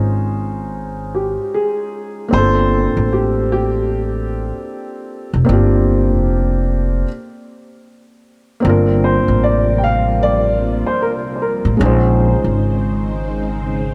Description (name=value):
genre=lo-fi hip hop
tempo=76 BPM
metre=4/4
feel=swing 61% on 16ths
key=G minor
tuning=A4 = 439 Hz
part: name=felt-muted upright piano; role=accompaniment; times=0.0-13.9 s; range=Ab3 to C5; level=-22 LUFS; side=equal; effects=none
part: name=upright bass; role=bass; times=0.0-13.9 s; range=F1 to Bb1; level=-19 LUFS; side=equal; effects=none
part: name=dark upright piano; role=melody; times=1.1-12.2 s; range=G4 to G5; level=-22 LUFS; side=equal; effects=diffuse ambient delay
part: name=string machine, cellos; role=sustained chords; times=8.6-13.9 s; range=C3 to C5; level=-26 LUFS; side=equal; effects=phaser, ensemble chorus
room=moderate plate reverb, RT60 3.5 s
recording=dreamy mix soaked in reverb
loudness=-17 LUFS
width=mono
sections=0.0-8.6 A section; 8.6-13.9 B section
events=stop 7.1-8.6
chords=0.0 Bbm11 (rootless); 2.3 Gm11; 11.8 Bbm11